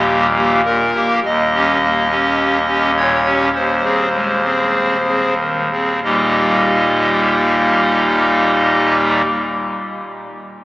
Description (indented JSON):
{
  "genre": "classical, chorale-style piece for pipe organ",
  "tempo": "45-54 BPM",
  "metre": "4/4",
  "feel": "rubato",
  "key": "Eb major",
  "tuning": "A4 = 440 Hz",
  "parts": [
    { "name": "pipe organ, clarinet reed", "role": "solo", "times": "0.0-9.2 s", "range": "Eb1 to Eb5", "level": "-13 LUFS", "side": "equal", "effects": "none" }
  ],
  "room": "wet cathedral reverb, RT60 5.0 s",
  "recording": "heard from further back in the room, small speaker sound",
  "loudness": "-13 LUFS",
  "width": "side -18 dB against mid",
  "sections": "0.0-1.2 A section; 1.2-6.0 B section; 6.0-10.6 C section",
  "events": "slowing down 0.0-6.0",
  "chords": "0.0 Eb; 1.2 Eb7; 3.5 Ab/Eb; 6.0 Eb"
}